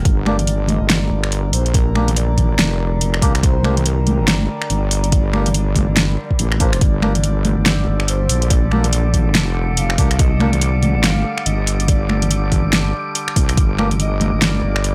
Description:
deep dubstep; 142 BPM; 4/4; swing 60% on 16ths, half-time; G minor; A4 = 441 Hz
overtone-sweeping drone; sustained chords; 0.0-14.9 s; D3 to Bb4; -32 LUFS; equal; chorus, built-in reverb
wobble bass; bass; 0.0-14.9 s; D1 to C2; -20 LUFS; equal; chorus
deep house drum kit; drums; 0.1-14.9 s; finger snaps, hi-hat, snare drum; -21 LUFS; equal
electronic kick drum; drums; 0.1-13.7 s; -18 LUFS; equal
breathy flute-like synth lead; melody; 0.3-14.9 s; Bb4 to F5; -31 LUFS; equal; subtle chorus, dub echo
melodica; stabs; 0.3-10.5, 13.8-13.9 s; Bb3 to G4; -30 LUFS; equal; dub echo
congas; percussion; 0.3-14.6 s; -25 LUFS; equal
wind-like tuned noise texture; texture; 7.3-14.9 s; D6; -34 LUFS; equal; built-in reverb
little or no reverb; dry, gritty hardware recording; -17 LUFS; mono
0.0-14.9 A section
0.0 Gm
| 0.05 0.47 0.90 1.32 | 1.74 2.17 2.59 3.01 | 3.43 3.85 4.28 4.70 | 5.12 5.54 5.97 6.39 | 6.81 7.24 7.66 8.08 | 8.50 8.93 9.35 9.77 | 10.19 10.62 11.04 11.46 | 11.88 12.31 12.73 13.15 | 13.57 14.00 14.42 14.84

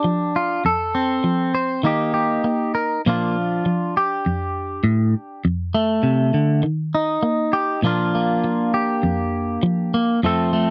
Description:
highlife; 100 BPM; 4/4; straight; Bb major; A4 = 441 Hz
clean electric guitar; solo; 0.0-10.7 s; F2 to C5; -20 LUFS; equal
little or no reverb; dry, close 1970s-style studio recording; -21 LUFS; mono
0.0-3.0 A section; 3.0-10.7 B section
0.0 Bb (rootless); 0.6 F; 1.8 Eb; 3.0 Bb; 5.4 F; 6.6 Eb; 7.8 Bb
0.05 | 0.65 1.25 1.84 2.44 | 3.04 3.64 4.24 4.84 | 5.44 6.04 6.63 7.23 | 7.83 8.43 9.03 9.63 | 10.22

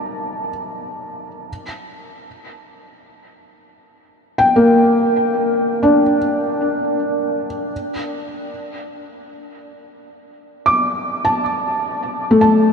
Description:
ambient; free time; A4 = 439 Hz
felt-muted upright piano; solo; 0.0-12.7 s; A3 to D6; -16 LUFS; equal; analog delay
wet huge ambient reverb, RT60 8.0 s; dreamy mix soaked in reverb, cassette tape; -15 LUFS; side -6 dB against mid
0.0-12.7 A section
0.0 Eb5; 1.5 Gm; 7.7 D5
free time

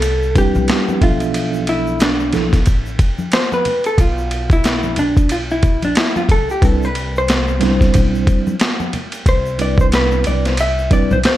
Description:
hip hop, jazz-hop; 91 BPM; 4/4; swing 59% on 16ths; C major; A4 = 437 Hz
vintage hollow-body jazz guitar; melody; 0.0-11.4 s; D4 to E5; -19 LUFS; equal
upright bass; bass; 0.0-11.2 s; A1 to C2; -21 LUFS; equal
boom bap sampler-style drum kit; drums; 0.0-11.4 s; hi-hat, kick drum, ride cymbal, snare drum; -16 LUFS; equal
tube shaker and congas; percussion; 0.0-11.4 s; -28 LUFS; left 2 dB
mellow tine electric piano; accompaniment; 0.4-2.6, 6.6-11.2 s; F3 to E5; -19 LUFS; right 2 dB; medium stereo tremolo
little or no reverb; dark, warm production; -13 LUFS; side -14 dB against mid
0.0-11.4 A section
hollow-body jazz guitar solo 0.0-11.4
0.0 Cmaj7; 1.0 Asus4; 6.6 Cmaj7
0.03 0.69 | 1.35 2.01 2.67 3.33 | 3.99 4.64 5.30 5.96 | 6.62 7.28 7.94 8.60 | 9.26 9.92 10.58 11.24

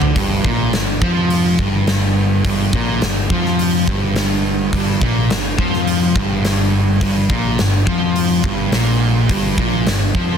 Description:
hard rock; 105 BPM; 4/4; straight; G minor; A4 = 441 Hz
overdriven semi-hollow guitar; riff; 0.0-10.4 s; G2 to F3; -20 LUFS; left 7 dB
sludgy distorted guitar; riff; 0.0-10.4 s; G2 to F3; -20 LUFS; right 8 dB; overdrive
fuzz picked electric bass; bass; 0.0-10.4 s; G1 to F2; -21 LUFS; equal; overdrive
huge arena drum kit; drums; 0.0-10.3 s; hi-hat, kick drum, snare drum, toms; -19 LUFS; equal; soft clipping on kick
little or no reverb; dense, heavily limited modern master; -14 LUFS; side -7 dB against mid
0.2-10.4 A section
drum fill 0.0
0.2 Gm
| 0.16 0.73 1.30 1.87 | 2.45 3.02 3.59 4.16 | 4.73 5.31 5.88 6.45 | 7.02 7.59 8.16 8.73 | 9.30 9.87

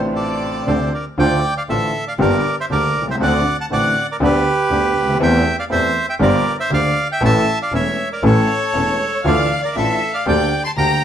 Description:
tango; 119 BPM; 4/4; rubato; D minor; A4 = 440 Hz
warm grand piano; accompaniment; 0.0-11.0 s; E1 to A4; -20 LUFS; left 1 dB
bandoneon; stabs; 0.0-11.0 s; F3 to A4; -29 LUFS; right 5 dB
clear double bass; bass; 0.0-11.0 s; E1 to E2; -21 LUFS; equal
bandoneon; melody; 0.2-11.0 s; G4 to C6; -19 LUFS; right 1 dB
warm violin; second line; 0.2-0.9, 8.2-11.0 s; C#5 to C6; -26 LUFS; left 4 dB
moderate studio reverb, RT60 0.7 s; band playing live in one room, vinyl crackle; -15 LUFS; side -9 dB against mid
0.0-1.2 A section; 1.2-11.0 B section
0.0 Dm7; 1.2 Dm; 2.2 Gm; 3.2 D7; 4.2 G/D; 5.2 C6/E; 6.2 Gm7; 7.2 A; 9.2 Dmadd9; 10.3 Gm/D
0.15 0.67 | 1.18 1.69 2.19 2.70 | 3.20 3.71 4.21 4.70 | 5.20 5.70 6.20 6.71 | 7.21 7.72 8.23 8.74 | 9.25 9.76 10.27 10.77

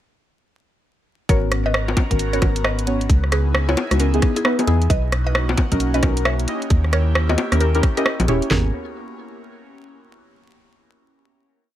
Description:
UK garage, two-step garage; 133 BPM; 4/4; swing 62% on 16ths; G# minor; A4 = 440 Hz
mallet-like synth pluck; melody; 1.3-8.7 s; C#4 to E5; -27 LUFS; left 1 dB; chorus, phaser, cassette tape, ping-pong delay
airy breathy pad; sustained chords; 1.3-8.7 s; A#3 to A#4; -30 LUFS; equal; chorus, phaser, sidechain pumping
deep mellow chord stab; stabs; 1.3-8.7 s; B3 to D#5; -24 LUFS; equal; chorus, tape echo
organ-like FM bass; bass; 1.3-8.7 s; D#1 to E2; -20 LUFS; equal; tube saturation, sidechain pumping
garage drum kit; drums; 1.3-8.6 s; kick drum, snare drum, toms; -18 LUFS; equal; overdrive
garage drum kit; drums; 1.3-8.5 s; bongos, hi-hat, rim click; -22 LUFS; left 1 dB; overdrive
little or no reverb; vinyl crackle; -16 LUFS; side -12 dB against mid
1.3-8.5 drop; 8.5-10.3 final chord
drop 1.3-8.5
1.3 G#m11; 3.1 C#m9; 4.9 Bmaj9; 6.5 D#7b9; 8.5 G#m11 (rootless)
| 1.29 1.74 2.19 2.64 | 3.10 3.55 4.00 4.45 | 4.90 5.35 5.80 6.25 | 6.71 7.16 7.61 8.06 | 8.51

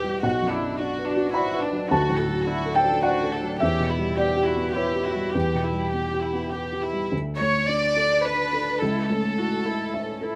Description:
neoclassical piano and strings; 106 BPM; 3/4; rubato; D major; A4 = 440 Hz
warm chamber violin section; melody; 0.0-10.4 s; D4 to D5; -29 LUFS; equal
dark cello; second line; 0.0-10.4 s; B3 to G4; -32 LUFS; equal
felt-muted upright piano; accompaniment; 0.0-10.4 s; B1 to B5; -27 LUFS; equal
light reverb; -24 LUFS; mono
0.0-7.1 A section; 7.1-10.4 B section
0.2 Bm; 1.9 D; 3.6 Em; 7.1 D5; 8.8 A/C#
| 0.24 0.80 1.35 | 1.91 2.47 3.04 | 3.60 4.17 4.75 | 5.34 5.94 6.53 | 7.12 7.68 8.24 | 8.81 9.37 9.94

